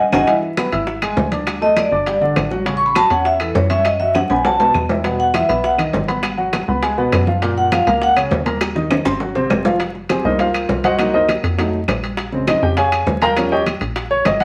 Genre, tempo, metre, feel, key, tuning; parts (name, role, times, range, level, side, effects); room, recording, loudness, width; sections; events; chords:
Afro-Cuban jazz; 202 BPM; 4/4; straight; F minor from 9.8 s; A4 = 442 Hz
vibraphone with medium hard mallets; melody; 0.1-8.1 s; A4 to C#6; -18 LUFS; equal
warm baby grand piano; accompaniment; 0.1-14.4 s; A#2 to E6; -21 LUFS; equal
tight sequencer bass; bass; 0.1-14.4 s; E#1 to F#2; -26 LUFS; equal
bongos; percussion; 0.1-14.4 s; -30 LUFS; equal
claves; percussion; 0.1-14.4 s; -31 LUFS; equal
congas; percussion; 0.1-14.4 s; -30 LUFS; equal
timbales; percussion; 0.1-14.4 s; -25 LUFS; equal
wet studio reverb, RT60 0.8 s; vinyl crackle; -17 LUFS; mono
0.3-9.8 A section; 9.8-14.4 A section
drum fill 0.0, 4.1-5.0, 8.6-9.8; band accent 0.0; vibraphone solo 0.0-9.8; grand piano solo 9.8-14.4
0.3 E7; 1.5 D5; 2.1 Gsus2; 2.7 A6; 3.9 F#5; 4.4 B5; 5.0 Emaj7; 6.2 G#m7; 6.8 C#7; 7.4 F#maj7; 8.6 D#5; 9.2 G#7; 9.8 Fm11; 11.0 Cm7b5; 11.6 F7b9; 12.2 Bbm7; 13.4 Eb9